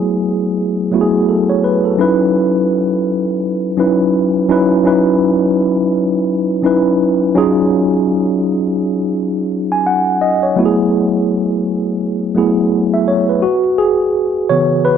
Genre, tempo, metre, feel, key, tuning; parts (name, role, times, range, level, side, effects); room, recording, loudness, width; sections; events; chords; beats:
R&B; 84 BPM; 4/4; swing 59% on 16ths; A4 = 441 Hz
mellow tine electric piano; solo; 0.0-15.0 s; C#3 to G#5; -12 LUFS; equal; medium stereo tremolo
moderate plate reverb, RT60 3.6 s; dark, warm production; -12 LUFS; side -8 dB against mid
0.0-13.4 A section; 13.4-15.0 B section
tine electric piano solo 13.4-15.0
0.0 F#m11; 2.0 C#m11; 7.4 D#m11; 10.6 F#m11; 13.4 C#m7
0.57 1.28 | 2.00 2.71 3.42 4.14 | 4.85 5.57 6.28 7.00 | 7.71 8.42 9.14 9.85 | 10.57 11.28 12.00 12.71 | 13.42 14.14 14.85